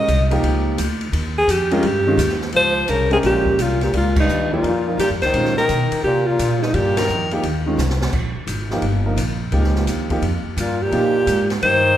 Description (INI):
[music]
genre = modal jazz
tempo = 172 BPM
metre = 4/4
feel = swing 65% on 8ths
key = Bb dorian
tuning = A4 = 440 Hz
[part]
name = clear alto saxophone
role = melody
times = 0.0-7.3, 10.6-12.0 s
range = Eb4 to Eb5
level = -18 LUFS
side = equal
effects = none
[part]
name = warm grand piano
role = accompaniment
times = 0.0-11.1 s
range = Eb3 to Bb4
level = -24 LUFS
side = right 1 dB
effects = none
[part]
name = upright bass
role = bass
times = 0.1-12.0 s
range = G1 to C3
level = -21 LUFS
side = equal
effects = none
[part]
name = open jazz drum kit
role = drums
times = 0.1-11.7 s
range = crash cymbal, hi-hat, kick drum, ride cymbal, snare drum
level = -27 LUFS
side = equal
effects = none
[part]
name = clear trombone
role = second line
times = 2.5-7.3, 10.6-12.0 s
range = G2 to F3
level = -25 LUFS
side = left 2 dB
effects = none
[sound]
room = moderate concert hall reverb, RT60 1.8 s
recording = recorded in a church or concert hall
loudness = -16 LUFS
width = side -11 dB against mid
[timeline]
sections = 0.0-2.5 A section; 2.5-12.0 B section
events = alto saxophone solo 0.0-2.5; band accent 4.1, 6.9; drum fill 7.8-8.1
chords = 0.0 Eb; 2.5 Bbm69; 5.3 Eb; 8.1 Bbm6; 10.9 Eb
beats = 0.10 0.44 0.79 | 1.14 1.49 1.84 2.19 | 2.54 2.89 3.24 3.59 | 3.94 4.29 4.64 4.99 | 5.34 5.69 6.04 6.39 | 6.74 7.09 7.43 7.79 | 8.13 8.48 8.83 9.18 | 9.53 9.88 10.23 10.58 | 10.93 11.28 11.63